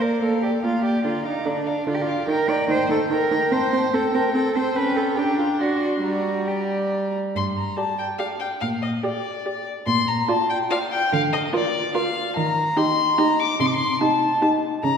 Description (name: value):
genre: quick classical-period movement for string quartet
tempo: 144 BPM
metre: 3/4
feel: rubato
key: G minor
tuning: A4 = 439 Hz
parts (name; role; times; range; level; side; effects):
- dark violin; melody; 0.0-15.0 s; D5 to D6; -25 LUFS; left 3 dB; none
- warm violin; second line; 0.0-14.7 s; G4 to G5; -30 LUFS; left 1 dB; none
- warm viola; accompaniment; 0.0-14.7 s; D3 to G4; -24 LUFS; right 1 dB; none
- rich cello; bass; 0.0-15.0 s; G2 to D5; -25 LUFS; right 2 dB; none
room: wet scoring stage reverb, RT60 1.9 s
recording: heard from further back in the room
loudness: -20 LUFS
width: side -7 dB against mid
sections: 0.0-7.4 A section; 7.4-15.0 A section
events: none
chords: 0.0 Bb; 1.1 Bb/D; 2.3 Eb; 3.5 Am7/C; 4.8 A7/C#; 5.2 Gm/D; 5.6 D7; 6.0 Gm; 7.4 G5; 8.6 Gm/Bb; 9.9 Bb; 11.1 Bb/D; 12.4 Eb; 13.6 Am7b5/C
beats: 0.22 0.64 | 1.05 1.47 1.88 | 2.29 2.70 3.11 | 3.52 3.94 4.35 | 4.76 5.18 5.60 | 6.04 6.48 6.93 | 7.36 7.78 8.20 | 8.62 9.04 9.46 | 9.87 10.29 10.71 | 11.13 11.54 11.95 | 12.37 12.78 13.18 | 13.60 14.01 14.42 | 14.83